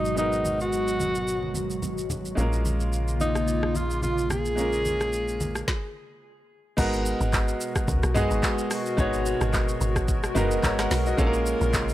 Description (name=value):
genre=amapiano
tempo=109 BPM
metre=4/4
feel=swing 55% on 16ths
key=G# dorian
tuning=A4 = 440 Hz
part: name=breathy alto saxophone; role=melody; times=0.0-5.9 s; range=D#4 to G#4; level=-28 LUFS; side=equal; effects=low-pass filter, tape echo
part: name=clear concert grand piano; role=accompaniment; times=0.0-11.9 s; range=G#3 to A#5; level=-29 LUFS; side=equal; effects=low-pass filter
part: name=hollow soft pad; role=sustained chords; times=0.0-11.9 s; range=B2 to A#4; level=-31 LUFS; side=equal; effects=chorus, sidechain pumping, low-pass filter
part: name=plucky analog bass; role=bass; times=0.0-5.6 s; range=G#1 to A#1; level=-30 LUFS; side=equal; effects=none
part: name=afro-pop drum kit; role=drums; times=0.1-11.9 s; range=crash cymbal, handclaps, hi-hat, kick drum, rim click, shaker, snare drum, toms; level=-28 LUFS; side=equal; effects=none
part: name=congas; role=percussion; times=0.5-5.5 s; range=none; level=-36 LUFS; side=right 1 dB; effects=none
part: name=deep log drum bass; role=bass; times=6.8-11.9 s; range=F#1 to C#2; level=-27 LUFS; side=equal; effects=none
room=digital ambience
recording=dry, gritty hardware recording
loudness=-23 LUFS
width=side -14 dB against mid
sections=0.0-6.8 A section; 6.8-11.9 B section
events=stop 5.7-6.8; drop 6.8-11.9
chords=0.0 G#m9; 2.4 A#m7; 6.8 G#m9; 11.2 A#m7